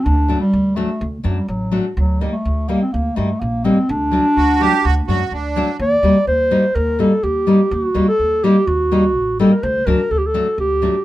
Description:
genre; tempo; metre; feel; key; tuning
klezmer; 126 BPM; 4/4; straight; unclear; A4 = 438 Hz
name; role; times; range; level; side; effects
dark clarinet; melody; 0.0-11.0 s; F#3 to D5; -17 LUFS; equal; none
upright bass; bass; 0.1-10.9 s; A1 to G2; -21 LUFS; equal; none
nylon-string guitar; accompaniment; 0.3-10.9 s; F#3 to Eb4; -17 LUFS; left 2 dB; none
accordion; second line; 4.4-5.8 s; D4 to G4; -19 LUFS; right 6 dB; light tremolo tuning
room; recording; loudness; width
light reverb; minimal, uncompressed stereo recording; -14 LUFS; side -15 dB against mid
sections
0.0-5.8 A section; 5.8-11.0 B section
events
none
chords
0.0 D; 2.0 Eb/D; 3.9 D; 5.8 Eb; 9.6 D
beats
| 0.05 0.53 1.01 1.49 | 1.97 2.45 2.93 3.41 | 3.89 4.37 4.85 5.33 | 5.80 6.28 6.76 7.24 | 7.71 8.19 8.67 9.15 | 9.62 10.10 10.58

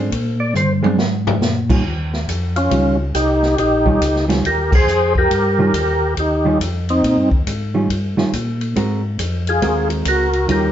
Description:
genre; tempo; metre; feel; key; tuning
soul jazz organ trio; 139 BPM; 4/4; swing 65% on 8ths; Eb mixolydian; A4 = 440 Hz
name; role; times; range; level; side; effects
hollow-body jazz guitar; accompaniment; 0.0-10.7 s; Eb3 to Bb4; -20 LUFS; right 2 dB; none
mellow tonewheel organ; bass; 0.0-10.7 s; Bb1 to Bb2; -20 LUFS; equal; chorus vibrato, slow rotary speaker
swinging big-band drum kit; drums; 0.1-10.6 s; crash cymbal, hi-hat, kick drum, ride cymbal, snare drum, toms; -22 LUFS; equal; none
percussive tonewheel organ; melody; 0.4-10.7 s; C4 to D5; -17 LUFS; equal; slow rotary speaker, overdrive, chorus vibrato
room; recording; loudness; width
wet studio reverb, RT60 0.7 s; heard from further back in the room, nothing above 7.6 kHz; -15 LUFS; side -10 dB against mid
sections
0.0-1.8 A section; 1.8-10.7 B section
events
tonewheel organ solo 0.0-1.8; drum fill 0.5-1.4; band accent 4.7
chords
0.1 Bb7(no3); 1.8 Eb9; 8.8 Ab9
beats
| 0.11 0.55 0.98 1.41 | 1.84 2.27 2.71 3.14 | 3.57 4.00 4.43 4.87 | 5.30 5.73 6.16 6.59 | 7.03 7.46 7.89 8.32 | 8.75 9.19 9.62 10.05 | 10.48

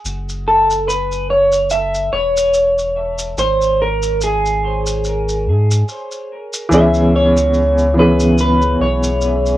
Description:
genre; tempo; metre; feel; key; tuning
trip hop; 72 BPM; 4/4; swing 56% on 16ths; C# minor; A4 = 444 Hz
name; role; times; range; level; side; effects
soft dub sub bass; bass; 0.0-9.6 s; E1 to G#2; -20 LUFS; equal; none
maracas; percussion; 0.1-9.6 s; none; -27 LUFS; equal; none
electric guitar through a small old amp; melody; 0.5-9.6 s; G#4 to E5; -16 LUFS; equal; wide subtle chorus, cassette tape, tape echo
dark upright piano; accompaniment; 6.7-9.6 s; E3 to G#4; -14 LUFS; equal; tremolo, cassette tape
dark analog pad; sustained chords; 7.7-9.6 s; G#4 to B5; -26 LUFS; right 1 dB; chorus, cassette tape
room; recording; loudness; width
moderate booth ambience, RT60 0.2 s; home recording on cassette; -13 LUFS; side -14 dB against mid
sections
0.0-9.6 A section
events
none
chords
0.0 F#5; 3.4 N.C.; 6.7 C#m7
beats
| 0.05 0.88 1.71 2.55 | 3.38 4.21 5.05 5.88 | 6.71 7.55 8.38 9.21

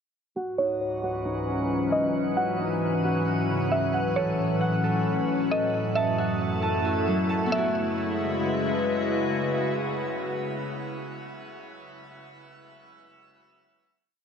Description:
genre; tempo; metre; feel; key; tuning
hip hop, atmospheric cloud-rap; 134 BPM; 4/4; half-time; C# minor; A4 = 440 Hz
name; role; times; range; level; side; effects
glassy FM pad; sustained chords; 0.8-11.5 s; C#2 to E5; -27 LUFS; left 1 dB; ensemble chorus, built-in reverb, low-pass filter
Celtic harp; arpeggios; 0.4-11.6 s; C#3 to A5; -32 LUFS; right 1 dB; low-pass filter, ping-pong delay
drifting glass-harmonics texture; texture; 0.8-11.5 s; C#4 to E6; -37 LUFS; equal; chorus, built-in reverb
mallet-like synth pluck; melody; 0.6-8.8 s; C#5 to F#5; -30 LUFS; right 1 dB; chorus, low-pass filter, ping-pong delay
room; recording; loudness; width
wet shimmer reverb, RT60 6.0 s; dark, warm production; -24 LUFS; side -7 dB against mid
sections
0.4-7.5 breakdown; 7.5-11.1 final chord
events
filter sweep 0.4-7.5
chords
0.4 C#m11; 3.9 A6; 5.7 F#m7; 7.5 C#m11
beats
| 0.36 0.81 1.25 1.70 | 2.15 2.60 3.04 3.49 | 3.94 4.39 4.83 5.28 | 5.73 6.18 6.63 7.07 | 7.52 7.97 8.42 8.87 | 9.31 9.76 10.21 10.66

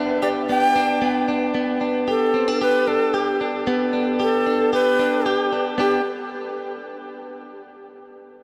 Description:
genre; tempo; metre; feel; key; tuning
indie pop; 113 BPM; 4/4; straight; G major; A4 = 445 Hz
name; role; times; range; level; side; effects
direct-recorded clean electric guitar; arpeggios; 0.0-6.0 s; B3 to G4; -25 LUFS; equal; analog chorus, analog delay
breathy bright long shakuhachi; melody; 0.2-6.0 s; G4 to G5; -24 LUFS; equal; analog delay
room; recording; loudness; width
wet huge ambient reverb, RT60 6.8 s; dreamy mix soaked in reverb; -21 LUFS; mono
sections
0.0-1.6 A section; 1.6-5.8 B section; 5.8-7.9 C section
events
none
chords
0.0 G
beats
0.50 1.03 | 1.56 2.09 2.62 3.15 | 3.67 4.21 4.73 5.26 | 5.79

